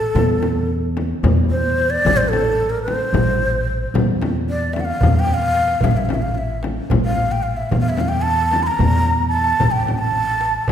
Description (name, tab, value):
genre	Turkish makam ensemble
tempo	222 BPM (eighths)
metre	7/8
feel	straight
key	A makam kurdi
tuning	A4 = 440 Hz
part	breathy ney	melody	0.0-10.7 s	A4 to C6	-20 LUFS	equal	none
part	upright bass	bass	0.0-10.7 s	A1 to E2	-21 LUFS	equal	none
part	darbuka	percussion	0.2-10.7 s	none	-24 LUFS	right 2 dB	none
part	frame drum	percussion	0.2-10.7 s	none	-23 LUFS	left 3 dB	none
room	wet recital hall reverb, RT60 1.7 s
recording	recorded in a church or concert hall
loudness	-16 LUFS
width	side -9 dB against mid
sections	0.0-10.7 A section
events	drum fill 5.3-5.8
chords	none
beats	| 0.17 0.43 0.70 0.97 1.24 1.51 1.78 | 2.05 2.32 2.59 2.86 3.13 3.40 3.67 | 3.94 4.21 4.48 4.75 5.02 5.29 5.56 | 5.83 6.10 6.37 6.64 6.91 7.18 7.45 | 7.72 7.99 8.26 8.53 8.80 9.07 9.34 | 9.61 9.88 10.15 10.42 10.69